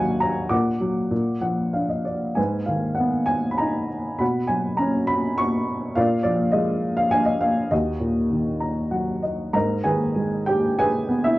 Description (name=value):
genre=classical, lyrical solo piano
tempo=94-105 BPM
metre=3/4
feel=rubato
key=Eb harmonic minor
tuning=A4 = 439 Hz
part: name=warm upright piano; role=solo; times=0.0-11.4 s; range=Eb2 to D6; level=-20 LUFS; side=equal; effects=none
room=light reverb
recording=dark, warm production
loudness=-20 LUFS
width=side -18 dB against mid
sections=0.0-9.5 A section; 9.5-11.4 B section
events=upright piano fill 1.1-2.4, 8.3-9.5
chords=0.0 Ebm; 0.5 Bbaug; 1.1 Bb; 2.4 Abm; 4.2 Bsus2; 6.0 Bb7; 7.7 Ebm; 9.5 G#m